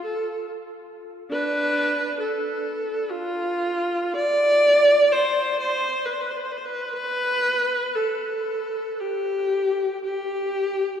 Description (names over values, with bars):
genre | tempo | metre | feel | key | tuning
classical, free, expressive piece for unaccompanied viola | 53-70 BPM | 3/4 | rubato | unclear | A4 = 440 Hz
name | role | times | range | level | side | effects
warm viola | solo | 0.0-11.0 s | D4 to D5 | -21 LUFS | equal | none
room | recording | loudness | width
wet cathedral reverb, RT60 5.1 s | heard from further back in the room | -21 LUFS | side -8 dB against mid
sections
0.0-11.0 A section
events
none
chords
none